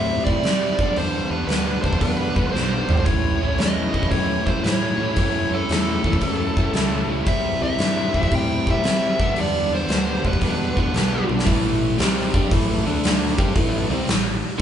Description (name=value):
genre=blues rock power trio and southern rock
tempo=114 BPM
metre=4/4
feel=swing 67% on 8ths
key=unclear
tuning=A4 = 440 Hz
part: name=dark smooth lead guitar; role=melody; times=0.0-11.3 s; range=A4 to G5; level=-25 LUFS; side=equal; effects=overdrive
part: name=overdriven electric guitar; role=riff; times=0.0-14.6 s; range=G2 to G4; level=-24 LUFS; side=equal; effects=none
part: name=growling fingered electric bass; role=bass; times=0.0-14.4 s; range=G1 to C3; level=-27 LUFS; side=left 1 dB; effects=overdrive
part: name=oversized low-tuned drum kit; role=drums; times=0.3-14.6 s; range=hi-hat, kick drum, snare drum, toms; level=-22 LUFS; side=equal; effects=none
room=moderate large studio reverb, RT60 0.9 s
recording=band playing live in one room, nothing above 10.5 kHz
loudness=-18 LUFS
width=side -9 dB against mid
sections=0.0-11.5 A section; 11.5-14.6 B section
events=drum fill 2.5-3.1, 11.2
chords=0.0 C; 0.7 G; 3.1 A; 7.3 C; 9.1 G; 11.5 A5; 12.8 D5; 13.3 A5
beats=0.44 | 0.96 1.49 2.02 2.54 | 3.07 3.59 4.12 4.64 | 5.17 5.70 6.22 6.75 | 7.27 7.80 8.32 8.85 | 9.37 9.90 10.42 10.94 | 11.47 11.99 12.51 13.03 | 13.55 14.07 14.59